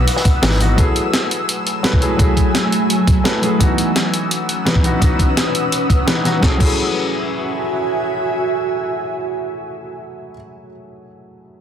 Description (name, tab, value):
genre	liquid drum and bass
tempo	170 BPM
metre	4/4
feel	straight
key	F# dorian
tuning	A4 = 440 Hz
part	felt-muted upright piano	accompaniment	0.0-11.6 s	E3 to B4	-22 LUFS	left 2 dB	tape echo
part	ethereal airy pad	sustained chords	0.0-10.0 s	F#3 to E6	-20 LUFS	right 1 dB	ensemble chorus, built-in reverb
part	dark detuned saw bass	bass	0.0-0.8 s	G#1	-16 LUFS	equal	none
part	breakbeat sampler-style drum kit	drums	0.1-6.7 s	crash cymbal, hi-hat, snare drum	-20 LUFS	equal	none
part	crunchy breakbeat drum kit	drums	0.1-0.7 s	hi-hat, snare drum	-24 LUFS	equal	high-pass filter on hats, high-pass filter on snare, high-pass filter on room
part	electronic kick drum	drums	0.3-6.7 s	none	-15 LUFS	equal	none
room	light reverb, studio ambience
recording	dense, heavily limited modern master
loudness	-14 LUFS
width	side -9 dB against mid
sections	0.0-6.4 A section; 6.4-9.3 B section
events	none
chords	0.0 C#m11 (rootless); 0.8 F#m9; 3.6 C#m11; 6.4 F#m9